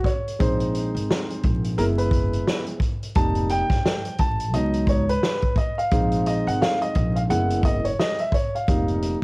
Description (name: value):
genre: hip hop, jazz-hop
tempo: 87 BPM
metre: 4/4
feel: swing 58% on 16ths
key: Bb minor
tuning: A4 = 441 Hz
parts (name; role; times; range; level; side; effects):
- dark baby grand piano; accompaniment; 0.0-9.2 s; Gb3 to A5; -24 LUFS; equal; plate reverb
- vintage drum kit; drums; 0.0-9.2 s; hi-hat, kick drum, snare drum; -23 LUFS; equal; cassette tape
- upright bass; bass; 0.4-9.2 s; F1 to Db2; -24 LUFS; equal; transformer saturation
room: light reverb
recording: home recording on cassette, vinyl crackle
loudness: -20 LUFS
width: side -27 dB against mid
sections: 0.0-9.2 A section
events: grand piano solo 0.0-9.2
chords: 0.4 Bb9sus4; 1.8 Gb9sus4; 3.2 F9sus4; 4.5 Db9sus4; 5.9 Bb9sus4; 7.3 Gb9sus4; 8.7 F9sus4